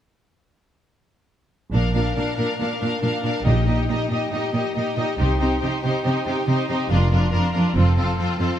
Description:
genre	cinematic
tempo	139 BPM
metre	4/4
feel	straight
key	Bb major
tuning	A4 = 442 Hz
part	rich symphonic violin section	melody	1.7-8.6 s	A4 to F5	-30 LUFS	left 4 dB	none
part	warm symphonic violin section	second line	1.7-8.6 s	F4 to Bb4	-28 LUFS	left 3 dB	none
part	clear symphonic viola section	accompaniment	1.7-8.6 s	C4 to Eb4	-28 LUFS	right 2 dB	none
part	clear symphonic cello section	bass	1.7-8.5 s	F2 to C3	-24 LUFS	right 1 dB	none
part	rich symphonic double bass section	bass	1.7-8.0 s	F1 to C2	-22 LUFS	right 1 dB	none
part	timpani	percussion	3.5-4.1, 6.9-7.5 s	F2 to Bb2	-25 LUFS	left 1 dB	none
room	moderate scoring stage reverb, RT60 1.7 s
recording	none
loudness	-19 LUFS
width	side -10 dB against mid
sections	1.7-8.6 A section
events	build-up 1.7-8.6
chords	1.7 Bb; 3.5 Eb/Bb; 5.2 Cm; 6.9 Bb/F; 7.8 F

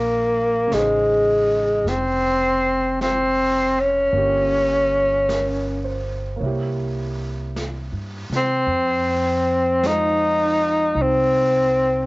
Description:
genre	jazz ballad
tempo	53 BPM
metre	4/4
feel	swing 67% on 8ths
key	Bb minor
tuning	A4 = 440 Hz
part	breathy tenor saxophone	melody	0.0-12.1 s	Ab3 to Eb4	-17 LUFS	equal	cassette tape
part	upright bass	bass	0.0-12.1 s	F1 to C3	-28 LUFS	equal	none
part	warm grand piano	accompaniment	0.7-12.1 s	Db3 to Db5	-31 LUFS	right 4 dB	cassette tape
part	jazz brush drum kit	drums	0.7-12.1 s	brushed snare drum, hi-hat, snare drum	-36 LUFS	equal	cassette tape
room	moderate small room reverb, RT60 0.6 s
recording	home recording on cassette, nothing above 7.8 kHz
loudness	-18 LUFS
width	side -23 dB against mid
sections	0.0-12.1 A section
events	none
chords	0.0 Bbm11; 4.1 Gm7b5; 6.4 C7b9; 8.7 Fm7

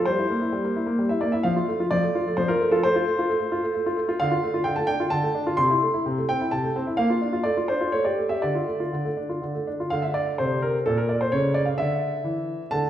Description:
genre	classical-period piano sonatina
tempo	129 BPM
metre	3/4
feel	rubato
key	F major, D minor from 4.2 s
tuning	A4 = 440 Hz
part	warm grand piano	solo	0.0-12.9 s	Bb2 to C6	-22 LUFS	equal	none
room	wet recital hall reverb, RT60 1.7 s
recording	heard from further back in the room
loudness	-22 LUFS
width	side -11 dB against mid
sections	0.0-9.9 A section; 9.9-12.9 B section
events	none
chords	0.1 C7/G; 1.5 F; 2.8 F/A; 4.2 Dm; 5.6 Am/C; 7.0 Bb; 7.5 Dm/A; 7.9 A7; 8.4 Dm; 9.9 D5; 11.3 A/C#

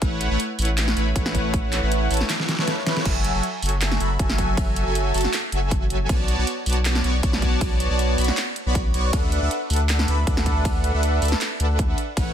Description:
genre	future bass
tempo	158 BPM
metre	4/4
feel	swing 53% on 16ths, half-time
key	unclear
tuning	A4 = 440 Hz
part	soft supersaw	riff	0.0-12.3 s	F#3 to C#6	-25 LUFS	equal	phaser, sidechain pumping, tape echo
part	saturated sub bass	bass	0.0-12.3 s	F#1 to D2	-23 LUFS	equal	sidechain pumping
part	dubstep drum kit	drums	0.0-12.2 s	crash cymbal, handclaps, hi-hat, ride cymbal, snare drum	-27 LUFS	right 1 dB	overdrive
part	electronic kick drum	drums	0.0-12.2 s	none	-24 LUFS	equal	overdrive
room	light reverb, digital ambience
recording	dense, heavily limited modern master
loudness	-19 LUFS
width	side -9 dB against mid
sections	0.0-12.3 A section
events	drum fill 2.3-3.1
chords	0.0 A6; 3.1 F#m7; 6.1 Bm7; 9.1 D6

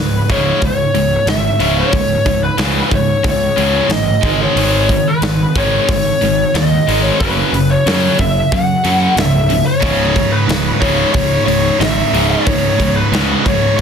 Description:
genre	hard rock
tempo	91 BPM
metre	4/4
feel	straight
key	unclear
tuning	A4 = 440 Hz
part	lead guitar through a small cranked amp	melody	0.0-13.8 s	B4 to F#5	-17 LUFS	left 2 dB	overdrive
part	overdriven electric guitar	riff	0.0-13.8 s	C#2 to G#3	-19 LUFS	left 9 dB	none
part	tight distorted guitar	riff	0.0-13.8 s	C#2 to G#3	-20 LUFS	right 11 dB	distortion
part	fuzz picked electric bass	bass	0.0-13.8 s	C#1 to F#2	-19 LUFS	equal	overdrive
part	big rock drum kit	drums	0.3-13.8 s	hi-hat, kick drum, snare drum	-19 LUFS	right 1 dB	none
part	heavy high-gain guitar	riff	9.8-13.8 s	C#2 to C#3	-19 LUFS	right 2 dB	distortion
room	light reverb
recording	dense, heavily limited modern master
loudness	-11 LUFS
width	side -7 dB against mid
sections	0.0-13.8 A section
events	none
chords	0.0 C#5; 4.2 G#5; 7.2 F#5; 9.8 C#5

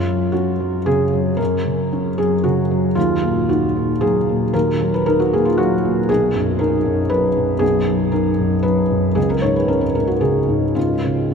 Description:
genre	neoclassical minimalist piano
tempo	115 BPM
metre	3/4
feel	rubato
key	F# major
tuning	A4 = 437 Hz
part	felt-muted upright piano	solo	0.0-11.3 s	B1 to C#5	-16 LUFS	equal	none
room	wet cathedral reverb, RT60 6.2 s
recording	recorded in a church or concert hall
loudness	-16 LUFS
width	side -6 dB against mid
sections	0.0-11.3 A section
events	none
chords	0.0 F#; 3.0 D#m; 6.1 B; 9.2 C#

